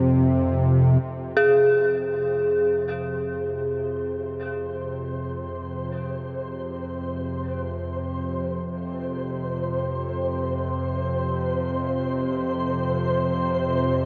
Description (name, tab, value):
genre	dark ambient drone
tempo	free time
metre	none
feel	none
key	F minor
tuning	A4 = 440 Hz
part	dark detuned synth bell	arpeggios	0.0-14.1 s	Ab4	-25 LUFS	equal	chorus, tremolo, diffuse ambient delay
part	bowed-like drone	drone	0.0-14.1 s	F2 to C3	-27 LUFS	equal	built-in reverb
part	flickering grainy texture	texture	1.0-14.1 s	C5	-33 LUFS	equal	built-in reverb
room	wet huge ambient reverb, RT60 8.1 s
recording	worn, warbling old tape, cassette tape, warbly pitch drift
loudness	-25 LUFS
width	mono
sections	0.0-1.0 A section; 1.0-14.1 A section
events	fade-in on synth drone 1.0-14.1; fade-in on synth texture 1.0-14.1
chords	0.0 F5